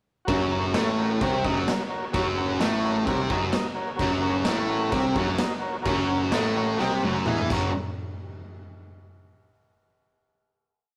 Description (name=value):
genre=garage rock duo or trio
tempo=129 BPM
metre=4/4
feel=straight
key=unclear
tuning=A4 = 441 Hz
part: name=combo organ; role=sustained chords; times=0.3-7.7 s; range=F#4 to D#5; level=-34 LUFS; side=equal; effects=none
part: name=fuzz guitar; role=riff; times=0.3-7.7 s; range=F#2 to E4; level=-28 LUFS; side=equal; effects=distortion
part: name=fuzz picked electric bass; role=bass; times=0.3-7.7 s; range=F#1 to E2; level=-35 LUFS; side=equal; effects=overdrive
part: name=raw garage drum kit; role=drums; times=0.3-7.6 s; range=crash cymbal, kick drum, snare drum, toms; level=-32 LUFS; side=equal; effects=none
room=moderate stone room reverb, RT60 1.4 s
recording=rough rehearsal-room recording, tube saturation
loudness=-25 LUFS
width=mono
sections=0.3-7.7 riff; 7.7-9.6 final hit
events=drum fill 6.8-7.7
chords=0.3 F#; 7.7 N.C.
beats=| 0.28 0.75 1.22 1.68 | 2.14 2.61 3.07 3.53 | 4.00 4.46 4.92 5.39 | 5.86 6.32 6.79 7.26 | 7.73